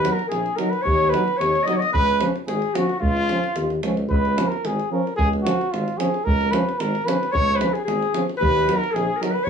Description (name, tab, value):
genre	balkan folk, Balkan brass band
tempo	111 BPM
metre	2/4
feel	straight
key	Db mixolydian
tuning	A4 = 440 Hz
part	dark trumpet	melody	0.0-9.5 s	F4 to Eb5	-23 LUFS	equal	none
part	clear clarinet	second line	0.0-3.8, 7.3-9.5 s	F4 to Eb5	-27 LUFS	left 4 dB	none
part	clear euphonium	accompaniment	0.0-9.3 s	F3 to Gb3	-26 LUFS	right 4 dB	none
part	warm French horn	accompaniment	0.0-9.3 s	Db4 to Eb4	-30 LUFS	left 6 dB	none
part	warm tuba	bass	0.0-9.5 s	Ab1 to Eb2	-24 LUFS	equal	none
part	davul	percussion	0.0-9.5 s	none	-27 LUFS	right 1 dB	none
room	light reverb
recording	none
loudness	-19 LUFS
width	side -7 dB against mid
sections	0.0-4.1 A section; 4.1-9.5 A section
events	none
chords	0.0 Ebm; 1.9 Db; 8.4 Ebm